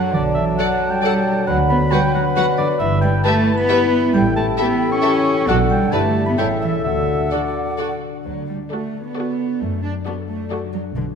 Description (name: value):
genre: cinematic, playful, whimsical film cue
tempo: 134 BPM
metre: 3/4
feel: straight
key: D major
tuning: A4 = 440 Hz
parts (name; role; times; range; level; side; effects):
- vibraphone with medium mallets; melody; 0.0-7.8 s; D5 to C#6; -25 LUFS; right 2 dB; none
- dark clarinet; second line; 0.0-8.0 s; G4 to D5; -27 LUFS; left 5 dB; none
- mellow hollow silver concert flute; second line; 0.0-8.0 s; E5 to B5; -27 LUFS; left 3 dB; none
- warm oboe; second line; 0.0-7.8 s; D5 to C#6; -26 LUFS; right 1 dB; none
- mellow bassoon; accompaniment; 0.0-8.0 s; C#3 to F#3; -26 LUFS; right 1 dB; none
- dark French horn section; sustained chords; 0.0-8.0 s; C#4 to B4; -26 LUFS; left 4 dB; none
- concert harp; arpeggios; 0.0-11.2 s; F#2 to B4; -27 LUFS; left 7 dB; none
- dark chamber cello section; bass; 0.0-11.0 s; D3 to D4; -22 LUFS; right 2 dB; none
- dark chamber double bass section; bass; 0.1-11.2 s; G1 to F#2; -24 LUFS; right 2 dB; none
- warm chamber violin section; melody; 0.6-10.8 s; C#5 to F#5; -31 LUFS; left 2 dB; none
- dark studio violin section; second line; 0.6-10.8 s; A4 to D5; -28 LUFS; left 2 dB; none
- warm chamber viola section; accompaniment; 0.6-10.8 s; E4 to A4; -30 LUFS; right 2 dB; none
room: moderate scoring stage reverb, RT60 1.9 s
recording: none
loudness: -16 LUFS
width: side -6 dB against mid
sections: 0.0-8.3 A section; 8.3-11.2 B section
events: none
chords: 0.1 Bm7; 1.5 Bm/D; 2.8 Em/G; 4.1 A7; 5.5 Bm7; 5.9 Em7/G; 6.4 A7; 6.8 D; 9.6 D/F#